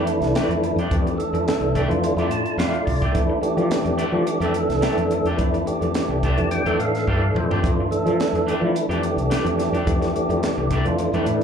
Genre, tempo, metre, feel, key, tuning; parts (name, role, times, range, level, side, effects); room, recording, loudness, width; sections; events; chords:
electric jazz fusion; 107 BPM; 4/4; swing 53% on 16ths; F major; A4 = 438 Hz
tonewheel organ; accompaniment; 0.0-11.4 s; E3 to A5; -21 LUFS; equal; slow rotary speaker, slapback echo
electric guitar at the edge of break-up; stabs; 0.0-11.3 s; E3 to G4; -29 LUFS; right 1 dB; lush chorus, slapback echo
fretless electric bass; bass; 0.0-11.4 s; C2 to F3; -24 LUFS; equal
crisp fusion drum kit; drums; 0.1-11.4 s; hi-hat, kick drum, snare drum, toms; -26 LUFS; equal
light reverb; live gig heard through the venue's PA, club reverb; -19 LUFS; side -7 dB against mid
0.0-11.4 A section
tonewheel organ fill 2.0-3.1, 5.9-7.6; drum fill 7.1-7.6
0.0 Fmaj13